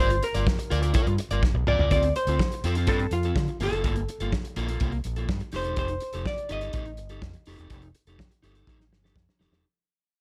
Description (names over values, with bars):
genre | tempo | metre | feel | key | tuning
disco | 124 BPM | 4/4 | straight | unclear | A4 = 439 Hz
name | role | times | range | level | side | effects
vintage hollow-body jazz guitar | melody | 0.0-9.1 s | F4 to Eb5 | -32 LUFS | equal | none
electric guitar at the edge of break-up | accompaniment | 0.0-9.6 s | Bb3 to D5 | -35 LUFS | equal | none
overdriven fingered electric bass | bass | 0.0-9.6 s | E1 to D3 | -31 LUFS | equal | none
warm soul drum kit | drums | 0.1-9.6 s | hi-hat, kick drum, snare drum, toms | -30 LUFS | equal | none
room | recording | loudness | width
light reverb, studio reverb | none | -26 LUFS | mono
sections
0.0-1.9 A section; 1.9-9.6 B section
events
drum fill 1.4-1.9, 8.7-9.6; fade-out 1.9-9.6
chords
0.0 Gm7; 1.9 Dm7; 3.6 Gm9; 5.5 F9